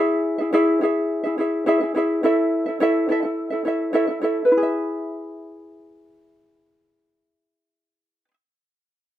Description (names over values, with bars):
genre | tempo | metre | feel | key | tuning
pop | 106 BPM | 4/4 | straight | E major | A4 = 439 Hz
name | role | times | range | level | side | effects
ukulele | accompaniment | 0.0-8.3 s | E4 to E5 | -19 LUFS | equal | none
room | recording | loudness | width
moderate studio reverb, RT60 0.8 s | minimal, uncompressed stereo recording | -19 LUFS | side -12 dB against mid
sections
0.0-4.5 A section; 4.5-6.8 B section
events
none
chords
0.0 C#m; 2.2 A; 4.5 E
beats
0.54 1.10 1.67 | 2.24 2.81 3.37 3.94 | 4.51 5.07 5.64 6.21